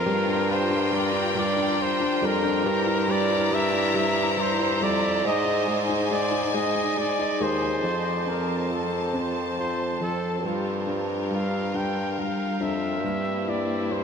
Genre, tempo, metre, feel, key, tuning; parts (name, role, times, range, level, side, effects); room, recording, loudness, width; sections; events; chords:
six-eight pop ballad; 46 BPM (dotted quarters); 6/8; straight; A4 = 440 Hz
warm flugelhorn; melody; 0.0-14.0 s; F4 to G5; -27 LUFS; right 1 dB; analog delay
dark baby grand piano; accompaniment; 0.0-14.0 s; F3 to G4; -28 LUFS; left 2 dB
warm studio string section; sustained chords; 0.0-14.0 s; F3 to Bb5; -29 LUFS; left 1 dB
warm bassoon; bass; 0.0-14.0 s; Eb2 to Ab2; -29 LUFS; right 1 dB
wet huge ambient reverb, RT60 8.1 s; dreamy mix soaked in reverb; -22 LUFS; side -6 dB against mid
0.0-7.8 A section; 7.8-14.0 B section
0.1 Gm7; 2.7 C7/G; 5.2 Ab; 7.8 F; 10.4 Gm7; 13.0 C7/G